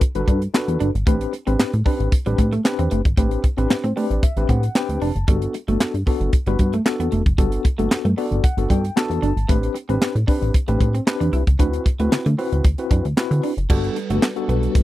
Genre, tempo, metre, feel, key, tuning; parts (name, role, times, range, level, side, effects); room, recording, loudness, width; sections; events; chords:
early-eighties boogie funk; 114 BPM; 4/4; straight; A4 = 442 Hz
tight funk drum kit; drums; 0.0-14.8 s; crash cymbal, handclaps, hi-hat, kick drum, snare drum; -18 LUFS; equal
mellow tine electric piano; accompaniment; 0.1-14.8 s; B3 to A5; -25 LUFS; left 3 dB; fast stereo tremolo
plucky analog bass; bass; 0.2-14.8 s; F1 to D3; -21 LUFS; equal
electric guitar at the edge of break-up; riff; 0.3-14.6 s; G3 to E4; -25 LUFS; right 3 dB; analog chorus
phased string machine; sustained chords; 13.7-14.8 s; G3 to B4; -28 LUFS; right 1 dB; ensemble chorus, phaser
little or no reverb; dry, close 1970s-style studio recording; -17 LUFS; side -15 dB against mid
0.0-13.7 A section; 13.7-14.8 B section
tine electric piano fill 3.7-5.3, 7.9-9.5
0.0 Gmaj9; 1.1 Am11; 5.3 Gmaj9; 9.5 Am11; 11.6 D13; 13.7 Gmaj9